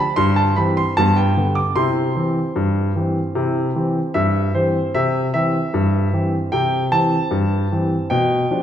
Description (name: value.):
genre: ragtime piano.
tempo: 76 BPM.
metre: 2/4.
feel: straight.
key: C major.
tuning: A4 = 439 Hz.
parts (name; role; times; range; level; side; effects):
warm concert grand piano; solo; 0.0-8.6 s; G2 to D6; -16 LUFS; equal; none.
room: wet recital hall reverb, RT60 1.6 s.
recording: recorded in a church or concert hall.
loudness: -16 LUFS.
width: side -10 dB against mid.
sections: 0.0-4.9 A section; 4.9-8.6 B section.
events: none.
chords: 0.2 C/G; 1.0 G; 1.8 C; 8.1 G7/B.